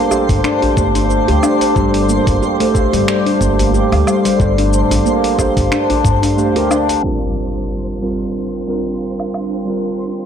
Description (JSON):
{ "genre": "organic downtempo", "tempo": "91 BPM", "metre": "4/4", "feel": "swing 55% on 16ths", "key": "G minor", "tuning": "A4 = 441 Hz", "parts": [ { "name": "muted felt-like synth keys", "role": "accompaniment", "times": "0.0-10.3 s", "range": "G3 to C5", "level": "-19 LUFS", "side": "right 3 dB", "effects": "chorus, sidechain pumping, analog delay" }, { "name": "granular cloud pad", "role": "sustained chords", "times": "0.0-10.3 s", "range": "D4 to D6", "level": "-24 LUFS", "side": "right 1 dB", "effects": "built-in reverb, sidechain pumping" }, { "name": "twinkling granular texture", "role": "texture", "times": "0.0-10.3 s", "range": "C5", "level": "-28 LUFS", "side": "right 2 dB", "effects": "built-in reverb" }, { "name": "handpan", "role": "arpeggios", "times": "0.1-6.9 s", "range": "G3 to G4", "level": "-16 LUFS", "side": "left 2 dB", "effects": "vintage 12-bit sampler grit, analog delay" }, { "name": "dusty soul sampler-style drum kit", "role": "drums", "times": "0.1-9.5 s", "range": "cabasa, finger snaps, hi-hat, woodblock", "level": "-24 LUFS", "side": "equal", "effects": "overdrive" }, { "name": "djembe", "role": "percussion", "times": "0.1-7.0 s", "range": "none", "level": "-26 LUFS", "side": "equal", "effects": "none" }, { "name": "upright bass", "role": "bass", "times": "0.3-7.0 s", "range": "G1 to G2", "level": "-18 LUFS", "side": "left 1 dB", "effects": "none" }, { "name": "electronic kick drum", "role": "drums", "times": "0.3-6.2 s", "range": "none", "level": "-18 LUFS", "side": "equal", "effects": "overdrive" }, { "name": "impact", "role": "sound effects", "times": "7.0-9.7 s", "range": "none", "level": "-26 LUFS", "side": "left 1 dB", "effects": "none" } ], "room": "light reverb, digital ambience", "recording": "dry, gritty hardware recording, low-pass filter", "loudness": "-13 LUFS", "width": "side -8 dB against mid", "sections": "0.0-7.0 A section; 7.0-10.3 B section", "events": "kick drops out 6.4-7.0; impact 7.0-9.7; filter sweep on ambient pad 7.0-10.3; filter sweep 7.0-10.3", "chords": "0.0 Bbadd9/G; 7.0 Gm7" }